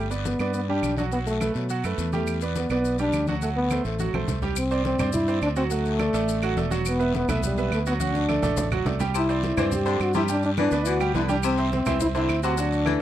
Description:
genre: latin, salsa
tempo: 210 BPM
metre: 4/4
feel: straight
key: unclear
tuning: A4 = 441 Hz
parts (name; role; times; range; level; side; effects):
- dark trombone; melody; 0.0-13.0 s; F#3 to G4; -26 LUFS; left 1 dB; none
- bright baby grand piano; accompaniment; 0.0-13.0 s; F#3 to G5; -29 LUFS; right 8 dB; none
- fingered electric bass; bass; 0.0-13.0 s; E1 to B2; -28 LUFS; equal; none
- congas; percussion; 0.1-13.0 s; none; -32 LUFS; left 2 dB; none
- maracas; percussion; 0.1-13.0 s; none; -39 LUFS; left 23 dB; none
- guiro; percussion; 0.2-13.0 s; none; -40 LUFS; left 22 dB; none
- claves; percussion; 0.4-13.0 s; none; -36 LUFS; right 9 dB; none
- breathy baritone saxophone; second line; 9.1-13.0 s; C3 to E3; -29 LUFS; left 12 dB; none
room: light reverb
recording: dry, close 1970s-style studio recording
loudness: -22 LUFS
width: side -12 dB against mid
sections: 0.0-4.6 A section; 4.6-13.0 B section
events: drum fill 4.0-4.6, 8.0-9.1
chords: 0.0 Gmaj7; 1.1 B5; 2.3 Em7; 3.4 D7; 4.6 Csus2; 5.7 Dadd9; 6.9 Emadd9; 8.0 D; 9.1 Cadd9; 10.3 G; 11.4 C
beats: 0.26 0.55 0.83 | 1.12 1.41 1.70 1.98 | 2.27 2.56 2.84 3.13 | 3.42 3.71 3.99 4.28 | 4.57 4.85 5.14 5.42 | 5.71 6.00 6.28 6.57 | 6.86 7.14 7.43 7.72 | 8.00 8.29 8.57 8.86 | 9.15 9.43 9.72 10.01 | 10.29 10.58 10.87 11.15 | 11.44 11.72 12.01 12.30 | 12.58 12.87

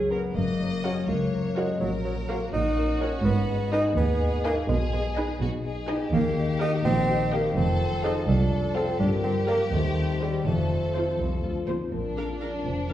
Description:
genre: cinematic, playful, whimsical film cue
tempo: 83 BPM (dotted quarters)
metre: 6/8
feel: straight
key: F# major, Bb major from 6.1 s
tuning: A4 = 435 Hz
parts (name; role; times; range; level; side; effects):
- rich studio viola section; accompaniment; 0.0-12.9 s; D4 to C5; -34 LUFS; right 1 dB; none
- warm bassoon; accompaniment; 0.0-11.2 s; F#3 to Eb4; -29 LUFS; right 1 dB; none
- concert harp; arpeggios; 0.0-12.9 s; F2 to Eb5; -30 LUFS; left 4 dB; none
- rich studio double bass section; bass; 0.0-12.9 s; F1 to D#2; -30 LUFS; right 2 dB; none
- rich studio violin section; melody; 0.1-12.9 s; F#4 to F5; -37 LUFS; left 3 dB; none
- rich studio violin section; second line; 0.1-12.9 s; D4 to G#5; -37 LUFS; left 1 dB; none
- dark studio cello section; bass; 0.4-12.9 s; C2 to B2; -30 LUFS; right 2 dB; none
- warm French horn section; sustained chords; 0.6-11.7 s; F4 to D#5; -35 LUFS; left 1 dB; none
- marimba with soft mallets; melody; 11.9-12.9 s; A4 to D5; -36 LUFS; left 1 dB; none
room: wet recital hall reverb, RT60 1.4 s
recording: heard from further back in the room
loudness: -23 LUFS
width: side -12 dB against mid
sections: 0.4-11.9 A section; 11.9-12.9 B section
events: none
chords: 0.4 F#; 1.8 F#/A#; 3.3 G#m; 4.7 G#m/B; 6.1 Eb; 7.6 F; 9.0 Gm; 9.7 Cm/Eb; 10.5 F; 11.9 Bb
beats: | 0.36 1.09 | 1.81 2.53 | 3.25 3.97 | 4.69 5.41 | 6.12 6.84 | 7.56 8.28 | 9.00 9.72 | 10.46 11.19 | 11.93 12.65

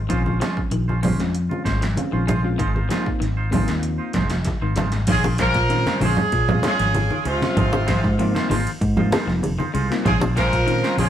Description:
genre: afrobeat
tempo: 96 BPM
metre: 4/4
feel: straight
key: Bb minor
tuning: A4 = 444 Hz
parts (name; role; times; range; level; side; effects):
- overdriven reed electric piano; accompaniment; 0.0-11.1 s; Ab3 to F4; -29 LUFS; left 2 dB; phaser
- electric guitar at the edge of break-up; arpeggios; 0.0-11.1 s; C3 to F3; -30 LUFS; left 3 dB; none
- fingered electric bass; bass; 0.0-11.1 s; F1 to Bb2; -23 LUFS; equal; none
- twangy electric guitar; stabs; 0.1-11.1 s; Ab3 to C5; -30 LUFS; right 4 dB; none
- 80s electronic pad drums; drums; 0.1-11.1 s; crash cymbal, hi-hat, kick drum, ride cymbal, snare drum; -26 LUFS; equal; none
- congas; percussion; 0.3-11.1 s; none; -24 LUFS; right 1 dB; none
- bright horn section; melody; 5.1-11.1 s; F4 to Bb4; -23 LUFS; right 1 dB; none
- raspy tenor saxophone; second line; 5.1-11.1 s; C3 to F3; -28 LUFS; right 1 dB; none
room: moderate stone room reverb, RT60 1.0 s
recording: rough rehearsal-room recording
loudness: -18 LUFS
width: side -10 dB against mid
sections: 0.0-5.1 A section; 5.1-11.1 B section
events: drum fill 4.5-5.1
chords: 0.1 Bbm9; 2.6 Ab6; 5.1 Bbm9; 7.6 Ab6; 10.1 Bbm9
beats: | 0.09 0.71 1.34 1.97 | 2.59 3.21 3.84 4.46 | 5.08 5.70 6.33 6.95 | 7.57 8.19 8.81 9.43 | 10.05 10.67

